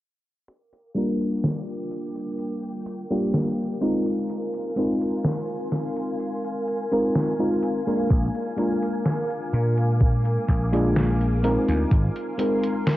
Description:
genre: vaporwave.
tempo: 63 BPM.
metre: 4/4.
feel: straight.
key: unclear.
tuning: A4 = 440 Hz.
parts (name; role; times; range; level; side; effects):
soft string machine; sustained chords; 1.3-13.0 s; Bb4 to D6; -32 LUFS; equal; ensemble chorus.
detuned 8-bit digital drum machine; drums; 0.5-13.0 s; hi-hat, snare drum; -27 LUFS; equal; vintage 12-bit sampler grit.
mellow FM electric piano; accompaniment; 0.9-13.0 s; G3 to Bb4; -24 LUFS; equal; analog chorus, analog delay.
vintage slap bass; bass; 8.1-12.1 s; Ab1 to Bb2; -22 LUFS; equal; none.
electronic kick drum; drums; 8.1-12.1 s; none; -20 LUFS; equal; overdrive, vintage 12-bit sampler grit.
room: light reverb.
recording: worn, warbling old tape, cassette tape, warbly pitch drift, low-pass filter.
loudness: -22 LUFS.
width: side -15 dB against mid.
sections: 0.5-13.0 A section.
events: filter sweep on string machine 0.5-13.0; filter sweep 0.5-13.0.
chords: 0.5 Gm7; 3.8 Ab69; 8.1 Bb7; 11.9 Ab69.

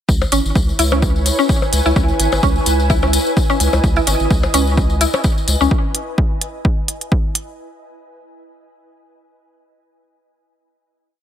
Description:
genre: minimal techno.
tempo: 128 BPM.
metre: 4/4.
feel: swing 55% on 16ths.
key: C# minor.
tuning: A4 = 440 Hz.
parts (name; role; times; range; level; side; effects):
saturated sub bass; bass; 0.1-5.7 s; G#1 to C#2; -18 LUFS; equal; sidechain pumping.
electronic kick drum; drums; 0.1-7.2 s; none; -16 LUFS; equal; overdrive.
tambourine; percussion; 0.1-5.7 s; none; -25 LUFS; left 4 dB; none.
ethereal airy pad; texture; 0.4-5.7 s; E4 to G#5; -23 LUFS; right 1 dB; ensemble chorus, built-in reverb, sidechain pumping.
percussion blips; percussion; 0.2-5.2 s; none; -23 LUFS; left 6 dB; overdrive, tape echo.
mallet-like synth pluck; riff; 0.3-5.7 s; C#4 to E4; -21 LUFS; left 1 dB; phaser, wide subtle chorus, sidechain pumping, tape echo.
electronic hi-hat; drums; 0.3-7.5 s; none; -18 LUFS; right 3 dB; none.
room: light reverb.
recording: none.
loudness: -14 LUFS.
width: side -10 dB against mid.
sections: 0.1-7.6 groove.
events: none.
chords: 0.1 C#m7.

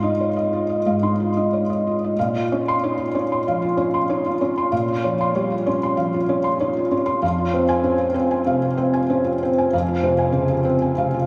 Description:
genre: neoclassical minimalist piano.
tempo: 95 BPM.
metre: 4/4.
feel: rubato.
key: Bb minor.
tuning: A4 = 441 Hz.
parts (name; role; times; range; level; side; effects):
felt-muted upright piano; solo; 0.0-11.3 s; F2 to C6; -21 LUFS; equal; tape echo.
room: wet huge ambient reverb, RT60 8.6 s.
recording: in a vast, echoing space, studio ambience.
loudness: -21 LUFS.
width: mono.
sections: 0.0-2.2 A section; 2.2-11.3 B section.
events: none.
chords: 0.0 Fm7/Ab; 2.2 Bbmadd9; 7.2 Fm.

